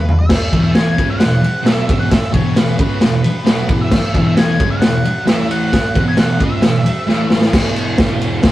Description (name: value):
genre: garage rock duo or trio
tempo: 133 BPM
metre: 4/4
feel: straight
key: E major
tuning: A4 = 441 Hz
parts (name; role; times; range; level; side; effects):
- octave-fuzz lead guitar; melody; 0.0-7.3 s; B4 to G#5; -23 LUFS; equal; distortion
- raw garage drum kit; drums; 0.1-8.5 s; crash cymbal, kick drum, ride cymbal, snare drum, toms; -14 LUFS; equal; none
- thick fuzz guitar; riff; 0.5-8.5 s; E2 to C#4; -17 LUFS; equal; distortion
room: wet small room ambience, RT60 0.5 s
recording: rough rehearsal-room recording, tube saturation, cassette tape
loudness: -12 LUFS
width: side -15 dB against mid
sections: 0.3-7.5 A section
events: drum fill 7.1-7.5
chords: 0.3 E; 5.3 A5; 6.0 E; 7.1 A5; 7.5 E5